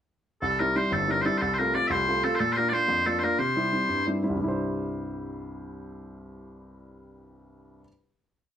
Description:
celtic folk, Celtic jig; 121 BPM (dotted quarters); 6/8; straight; C mixolydian; A4 = 440 Hz
loud bright bagpipes; melody; 0.4-4.1 s; A4 to E5; -25 LUFS; equal
warm baby grand piano; accompaniment; 0.4-7.9 s; G1 to C5; -28 LUFS; equal
moderate studio ambience, RT60 0.5 s; -23 LUFS; side -9 dB against mid
0.4-4.4 A section; 4.4-6.4 final chord
0.4 C; 1.4 F/C; 2.4 Bb; 3.4 C

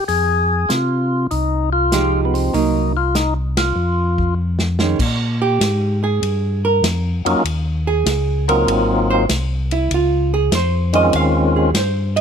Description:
soul jazz organ trio; 98 BPM; 4/4; swing 68% on 8ths; F minor, Bb dorian from 5.0 s; A4 = 440 Hz
percussive tonewheel organ; melody; 0.0-11.7 s; Eb3 to Ab4; -18 LUFS; left 2 dB; slow rotary speaker
mellow tonewheel organ; bass; 0.1-12.2 s; Ab1 to C3; -19 LUFS; left 1 dB; chorus vibrato, slow rotary speaker
warm soul drum kit; drums; 0.1-12.2 s; crash cymbal, hi-hat, kick drum, ride cymbal, snare drum; -24 LUFS; equal
hollow-body jazz guitar; accompaniment; 1.9-12.2 s; Eb3 to F5; -19 LUFS; right 5 dB
little or no reverb; -15 LUFS; side -7 dB against mid
0.0-5.0 A section; 5.0-12.2 B section
band accent 3.5-3.8; drum fill 4.4-5.0; hollow-body jazz guitar solo 5.0-12.2
0.1 Fm9; 2.5 Cm7b5; 3.8 Fm7; 5.0 Bb7(no3); 7.5 Ebm9; 8.7 Ab13; 9.9 Dbmaj9

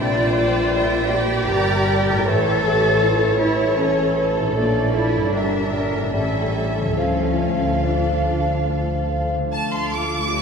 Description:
classical; 68-80 BPM; 3/4; rubato; D minor; A4 = 435 Hz
warm symphonic violin section; melody; 0.0-10.4 s; C#5 to D6; -29 LUFS; right 1 dB
concert flute; second line; 0.0-9.5 s; C#5 to F5; -28 LUFS; equal
warm symphonic violin section; second line; 0.0-10.4 s; G4 to F5; -29 LUFS; equal
mellow bassoon; accompaniment; 0.0-9.5 s; E3 to A3; -28 LUFS; right 4 dB
warm symphonic viola section; accompaniment; 0.0-10.4 s; A3 to C5; -28 LUFS; equal
mellow French horn section; sustained chords; 0.0-9.2 s; F4 to F5; -28 LUFS; left 1 dB; stereo widening
concert harp; arpeggios; 0.0-10.4 s; G2 to D5; -28 LUFS; left 3 dB
warm symphonic cello section; bass; 0.0-10.4 s; Bb3 to Bb4; -23 LUFS; left 1 dB
warm symphonic double bass section; bass; 0.0-10.4 s; G1 to D2; -24 LUFS; equal
wet cathedral reverb, RT60 6.0 s; in a vast, echoing space; -17 LUFS; side -6 dB against mid
0.0-9.5 A section
0.0 Gm/Bb; 2.3 A; 4.6 Bbmaj7; 5.3 Edim/G; 6.1 A7; 7.0 Dm

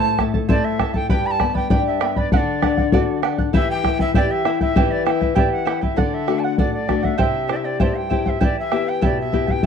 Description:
andean folk, Andean ensemble; 98 BPM; 2/4; straight; E minor; A4 = 440 Hz
breathy bright large quena; melody; 0.0-9.7 s; D5 to B5; -25 LUFS; equal
charango; accompaniment; 0.0-9.7 s; E4 to B5; -25 LUFS; right 10 dB
nylon-string guitar; accompaniment; 0.0-9.7 s; G2 to G4; -23 LUFS; left 10 dB
bombo; percussion; 0.2-9.7 s; -20 LUFS; equal
studio ambience; dry, close 1970s-style studio recording; -17 LUFS; side -7 dB against mid
0.0-6.0 A section; 6.0-9.7 B section
0.0 Am; 1.1 G; 2.3 D; 3.5 Em; 6.0 D; 7.2 C; 8.4 Em

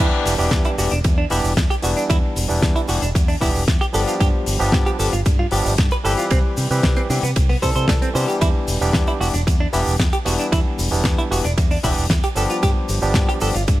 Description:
nu-disco, nu disco; 114 BPM; 4/4; straight; E minor; A4 = 440 Hz
barky tine electric piano; accompaniment; 0.0-13.6 s; E3 to B4; -23 LUFS; equal; medium stereo tremolo, vintage 12-bit sampler grit, sidechain pumping, dub echo
direct-recorded clean electric guitar; riff; 0.0-13.6 s; G3 to C5; -26 LUFS; right 2 dB; lush chorus, dub echo
fingered electric bass with an envelope filter; bass; 0.0-13.8 s; E1 to C3; -22 LUFS; equal
damped 70s drum kit; drums; 0.0-13.8 s; hi-hat, ride cymbal, shaker, snare drum; -24 LUFS; left 1 dB
electronic kick drum; drums; 0.5-13.8 s; -19 LUFS; equal; overdrive
small room ambience; -16 LUFS; side -16 dB against mid
0.0-13.8 A section
drop 0.0-13.8
0.0 Em7; 3.9 G7; 6.3 Cmaj7; 8.4 Em7; 12.4 G7

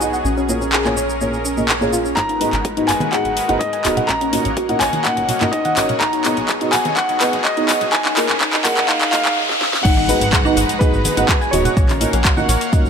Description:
progressive house; 125 BPM; 4/4; straight; A4 = 441 Hz
supersaw pad; sustained chords; 0.0-12.9 s; Ab3 to Bb5; -26 LUFS; equal; sidechain pumping
soft round pluck; arpeggios; 0.0-12.5 s; Db4 to Ab5; -22 LUFS; equal; lush chorus, sidechain pumping, tape echo
felt-muted upright piano; stabs; 0.0-12.9 s; Ab2 to D#5; -24 LUFS; right 1 dB; sidechain pumping, low-pass filter, tape echo
plucky analog bass; bass; 0.0-12.9 s; Eb1 to Bb2; -25 LUFS; equal; sidechain pumping
house drum kit; drums; 0.0-12.9 s; crash cymbal, handclaps, hi-hat, shaker, snare drum; -20 LUFS; equal; overdrive, small room ambience
warm grand piano; melody; 2.2-12.0 s; Cb5 to Bb5; -22 LUFS; equal; sidechain pumping, tape echo
electronic kick drum; drums; 2.2-12.8 s; -18 LUFS; equal; high-pass filter on kick, small room ambience
riser, swell and impact; sound effects; 4.7-11.8 s; -26 LUFS; left 1 dB
congas and woodblock; percussion; 3.0-12.7 s; -27 LUFS; right 3 dB; sidechain pumping on perc
rich studio violin section; second line; 9.8-12.0 s; Cb5 to Gb5; -27 LUFS; equal; sidechain pumping, tape echo
moderate concert hall reverb, RT60 2.4 s; high-pass filter; -14 LUFS; side -7 dB against mid
0.0-2.2 A section; 2.2-9.8 B section; 9.8-12.9 C section
filter sweep on synth pluck 0.0-2.2; filter sweep on felt piano 0.0-2.2, 2.2-9.8; build-up 2.2-9.8; drum fill 2.2-9.4, 9.5-9.8; filter sweep 2.2-9.8; riser 4.7-9.8; swell 8.9-9.8; drop 9.8-12.9; impact 9.8-11.8
0.2 Bbm7; 2.2 Abm7; 4.1 Ebm7/Bb; 6.0 B6; 7.9 Bbm7; 9.8 Abm7; 11.8 Ebm7/Bb

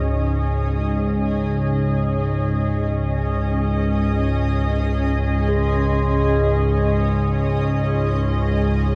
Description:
ambient; free time; A4 = 435 Hz
granular cloud pad; sustained chords; 0.0-8.9 s; C#4 to D#5; -27 LUFS; equal; built-in reverb
dark detuned synth bell; arpeggios; 0.0-8.9 s; barely audible
analog drone; drone; 0.0-8.9 s; C#2 to G#2; -22 LUFS; equal; chorus
bronze singing bowl; texture; 5.5-8.9 s; G#4; -30 LUFS; equal
moderate huge ambient reverb, RT60 8.4 s; -20 LUFS; mono
0.0-8.9 A section
0.0 C#5

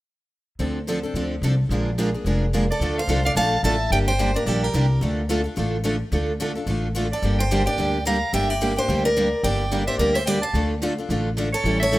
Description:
acoustic string swing (jazz manouche); 217 BPM; 4/4; swing 58% on 8ths; D minor; A4 = 441 Hz
picked steel-string acoustic guitar; accompaniment; 0.6-12.0 s; D3 to A4; -28 LUFS; left 3 dB
picked steel-string acoustic guitar; accompaniment; 0.6-12.0 s; D3 to Bb4; -27 LUFS; right 3 dB
upright bass; bass; 0.6-12.0 s; F1 to D2; -24 LUFS; equal
picked steel-string acoustic guitar; melody; 2.7-5.0, 7.1-12.0 s; G4 to F5; -25 LUFS; left 1 dB
growling soprano saxophone; second line; 2.7-5.0, 7.1-12.0 s; Bb4 to Bb5; -26 LUFS; right 3 dB
studio ambience; rough home demo mix; -20 LUFS; side -17 dB against mid
0.6-2.8 A section; 2.8-12.0 B section
0.6 Dm7; 1.7 Bb7; 2.8 Dm; 3.9 Gm; 5.0 Dm; 7.2 Gm; 10.5 Dm

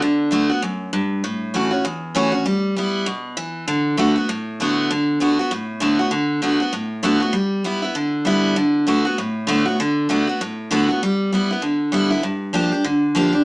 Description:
rock; 196 BPM; 4/4; swing 58% on 8ths; D major; A4 = 441 Hz
picked steel-string acoustic guitar; solo; 0.0-13.4 s; E2 to G4; -17 LUFS; equal
wet studio reverb, RT60 0.6 s; band playing live in one room, small speaker sound; -17 LUFS; side -26 dB against mid
0.0-6.1 A section; 6.1-13.4 B section
0.0 D6; 1.2 A6; 2.5 G6; 3.7 D6; 7.3 G6; 8.6 D6; 11.0 G6; 12.2 Gm7

